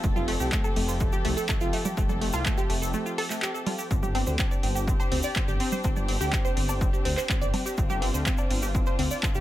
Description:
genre	melodic techno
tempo	124 BPM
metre	4/4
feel	straight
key	unclear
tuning	A4 = 435 Hz
part	warm chamber string section	sustained chords	0.0-9.4 s	F3 to A4	-34 LUFS	left 2 dB	sidechain pumping
part	analog pluck	arpeggios	0.0-9.4 s	A3 to D5	-31 LUFS	right 1 dB	chorus, phaser, cassette tape, sidechain pumping, digital delay
part	swelling detuned saw bass	bass	0.0-9.4 s	F1 to D2	-30 LUFS	equal	tube saturation, sidechain pumping
part	electronic kick drum	drums	0.0-9.3 s	none	-27 LUFS	equal	none
part	egg shaker	percussion	0.0-9.4 s	none	-40 LUFS	right 3 dB	none
part	punchy analog drum machine	drums	0.2-9.3 s	congas, handclaps, hi-hat, woodblock	-32 LUFS	right 1 dB	sidechain pumping on perc, sidechain pumping on hats
room	little or no reverb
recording	none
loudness	-24 LUFS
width	side -14 dB against mid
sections	0.0-9.4 A section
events	break 2.9-3.9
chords	0.0 Fadd9; 3.9 Gsus4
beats	| 0.04 0.52 1.00 1.49 | 1.97 2.46 2.94 3.42 | 3.91 4.39 4.88 5.36 | 5.84 6.33 6.81 7.29 | 7.78 8.26 8.75 9.23

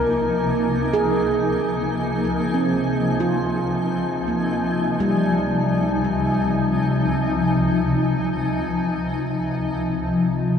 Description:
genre	ambient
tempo	68 BPM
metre	4/4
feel	straight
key	unclear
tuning	A4 = 443 Hz
part	granular cloud pad	sustained chords	0.0-10.6 s	Db2 to Ab5	-20 LUFS	left 1 dB	built-in reverb, shimmer reverb
part	handpan	arpeggios	0.0-8.3 s	G3 to Bb4	-24 LUFS	right 1 dB	ping-pong delay, shimmer reverb
part	deep rumbling drone	bass	10.3-10.6 s	Db2	-45 LUFS	equal	none
room	wet huge ambient reverb, RT60 7.8 s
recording	none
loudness	-19 LUFS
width	side -7 dB against mid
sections	0.0-9.3 A section; 9.3-10.6 B section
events	filter sweep on ambient pad 9.3-10.6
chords	0.0 Fm/Db; 9.3 Dbmaj7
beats	0.51 1.38 | 2.25 3.12 4.00 4.88 | 5.76 6.64 7.53 8.43 | 9.33 10.22

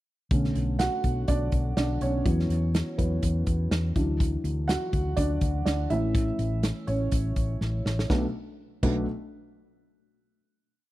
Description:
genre	piano-driven pop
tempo	123 BPM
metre	4/4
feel	swing 56% on 16ths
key	B minor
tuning	A4 = 440 Hz
part	dark upright piano	accompaniment	0.3-9.1 s	B1 to F#5	-29 LUFS	right 1 dB	none
part	hollow-body short-scale fingered electric bass	bass	0.3-9.1 s	A1 to E2	-28 LUFS	equal	none
part	loose indie drum kit	drums	0.3-9.0 s	crash cymbal, hi-hat, kick drum, snare drum	-28 LUFS	equal	none
room	small room reverb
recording	dry, close 1970s-style studio recording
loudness	-24 LUFS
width	side -16 dB against mid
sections	0.3-8.1 verse; 8.1-10.0 final chord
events	upright piano solo 0.3-8.1; drum fill 7.6-8.1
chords	0.3 Bm7; 2.3 Esus2; 4.0 Dadd9; 5.9 A; 8.1 Bm7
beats	| 0.31 0.80 1.28 1.77 | 2.26 2.75 3.23 3.72 | 4.20 4.69 5.17 5.66 | 6.15 6.63 7.12 7.61 | 8.09 8.58

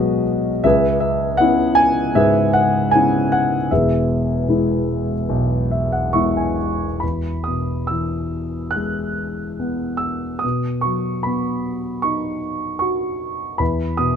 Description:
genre	classical, lyrical solo piano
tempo	68-81 BPM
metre	4/4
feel	rubato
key	E major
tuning	A4 = 438 Hz
part	dark concert grand piano	solo	0.0-14.2 s	E1 to F#6	-17 LUFS	equal	none
room	little or no reverb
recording	close, detailed microphones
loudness	-17 LUFS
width	side -7 dB against mid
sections	0.0-7.0 A section; 7.0-14.2 B section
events	grand piano fill 5.3-7.0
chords	0.0 G#m7/B; 0.6 C#m7; 3.7 E; 10.4 Badd9; 13.6 E5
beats	| 0.65 1.39 2.15 2.93 | 3.70 4.47 5.28 6.14 | 7.03 7.90 8.75 9.59 | 10.44 11.26 12.04 12.82 | 13.61

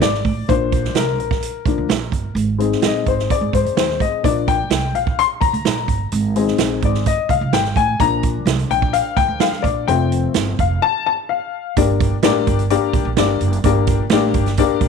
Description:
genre	uptempo 1960s-style soul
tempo	128 BPM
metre	4/4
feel	straight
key	Bb mixolydian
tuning	A4 = 440 Hz
part	dark upright piano	accompaniment	0.0-14.9 s	F3 to C6	-18 LUFS	left 12 dB	none
part	upright bass	bass	0.0-14.9 s	F1 to Ab2	-21 LUFS	right 2 dB	none
part	swinging big-band drum kit	drums	0.0-14.9 s	hi-hat, kick drum, snare drum	-20 LUFS	right 6 dB	none
room	light reverb, studio reverb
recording	1960s-style stereo with parts hard left and right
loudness	-15 LUFS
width	side -6 dB against mid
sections	0.0-11.8 A section; 11.8-14.9 B section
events	upright piano solo 0.0-11.8; break 10.8-11.8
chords	0.5 Bb; 2.4 Ab; 4.2 Bb; 6.1 Ab; 8.0 Bb; 9.9 F; 11.8 Gm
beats	0.01 | 0.48 0.95 1.42 1.89 | 2.36 2.83 3.30 3.77 | 4.24 4.71 5.18 5.65 | 6.12 6.59 7.06 7.53 | 8.00 8.47 8.94 9.41 | 9.88 10.35 10.82 11.29 | 11.76 12.23 12.70 13.17 | 13.64 14.11 14.58

